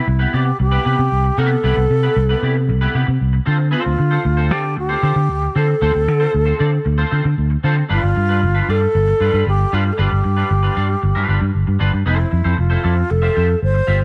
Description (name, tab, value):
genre	disco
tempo	115 BPM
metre	4/4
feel	straight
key	unclear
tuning	A4 = 441 Hz
part	alto flute	melody	0.0-14.0 s	E4 to C5	-23 LUFS	equal	none
part	clean electric guitar	accompaniment	0.0-14.0 s	G3 to E5	-26 LUFS	equal	analog chorus
part	fingered electric bass	bass	0.1-14.0 s	F1 to D3	-18 LUFS	equal	none
room	light reverb, small room ambience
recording	nothing above 10.6 kHz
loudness	-17 LUFS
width	mono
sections	0.0-12.1 A section; 12.1-14.0 B section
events	none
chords	0.0 Cmaj7; 3.5 Dm7; 7.9 G7; 12.1 Fmaj7; 13.1 Fmaj9